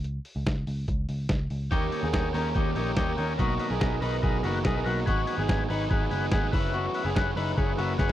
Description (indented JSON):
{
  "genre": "jangly indie pop",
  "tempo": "144 BPM",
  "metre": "4/4",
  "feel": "straight",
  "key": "G# minor",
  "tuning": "A4 = 440 Hz",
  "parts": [
    { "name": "vintage muted picked electric bass", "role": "bass", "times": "0.0-8.1 s", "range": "F#1 to D#2", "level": "-30 LUFS", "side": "equal", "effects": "none" },
    { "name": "lo-fi sampler-style drum kit", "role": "drums", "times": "0.0-8.1 s", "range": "hi-hat, kick drum, snare drum", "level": "-29 LUFS", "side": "equal", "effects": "none" },
    { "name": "combo organ", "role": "accompaniment", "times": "1.7-8.1 s", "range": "F#4 to G#5", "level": "-34 LUFS", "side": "left 5 dB", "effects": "none" },
    { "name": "overdriven electric guitar", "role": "accompaniment", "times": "1.7-8.1 s", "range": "G#2 to B4", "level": "-32 LUFS", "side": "right 6 dB", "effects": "none" },
    { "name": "electric guitar through a small old amp", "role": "arpeggios", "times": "1.7-8.1 s", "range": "A#3 to B4", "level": "-31 LUFS", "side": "left 3 dB", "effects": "spring reverb, slapback echo" }
  ],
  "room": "little or no reverb",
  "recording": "dry, close 1970s-style studio recording",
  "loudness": "-25 LUFS",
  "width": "side -13 dB against mid",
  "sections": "0.0-8.1 A section",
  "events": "none",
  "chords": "0.0 N.C.; 1.7 D#7; 3.4 Bmaj7; 5.1 G#m7; 6.5 F#7sus4"
}